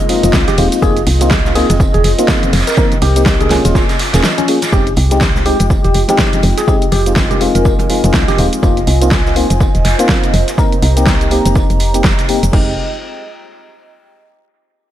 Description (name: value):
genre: deep house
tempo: 123 BPM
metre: 4/4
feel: swing 59% on 16ths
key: F minor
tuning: A4 = 444 Hz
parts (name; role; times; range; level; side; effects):
- dark analog pad; sustained chords; 0.0-12.8 s; Ab3 to Bb5; -22 LUFS; right 2 dB; chorus, sidechain pumping
- mellow FM electric piano; stabs; 0.0-12.7 s; Ab3 to Bb4; -17 LUFS; left 1 dB; chorus, sidechain pumping, low-pass filter, dub echo
- deep house drum kit; drums; 0.0-12.6 s; crash cymbal, hi-hat, ride cymbal, shaker, snare drum; -19 LUFS; equal; overdrive
- gated 80s drum kit; drums; 0.0-12.4 s; hi-hat, snare drum, tambourine; -24 LUFS; right 1 dB; sidechain pumping on hats, high-pass filter on hats, high-pass filter on snare, sidechain pumping on perc, high-pass filter on perc, high-pass filter on room, analog delay
- woody FM bass; bass; 0.2-12.8 s; Eb1 to C2; -15 LUFS; equal; sidechain pumping
- electronic kick drum; drums; 0.3-12.6 s; none; -15 LUFS; equal; overdrive
- congas; percussion; 0.3-8.4 s; none; -26 LUFS; left 3 dB; none
- tine electric piano; melody; 0.5-8.5 s; Db4 to Bb4; -20 LUFS; equal; medium stereo tremolo, analog delay
room: light reverb, small room ambience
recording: echo-heavy mix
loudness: -10 LUFS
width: side -12 dB against mid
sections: 0.0-4.7 A section; 4.7-12.5 B section; 12.5-14.5 C section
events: drop 0.0-4.7; filter sweep on FM bass 4.7-12.5; filter sweep on FM electric piano 4.7-12.5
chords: 0.0 Bb7sus4/F; 2.5 Cm7/F; 3.8 Eb9sus4; 4.7 Fm9; 6.7 Bb7sus4/F; 8.6 Ab6/F; 10.3 Cm7/F; 12.5 Fm9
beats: 0.34 | 0.82 1.31 1.80 2.29 | 2.78 3.26 3.75 4.24 | 4.73 5.21 5.70 6.19 | 6.68 7.17 7.65 8.14 | 8.63 9.12 9.61 10.09 | 10.58 11.07 11.56 12.04 | 12.53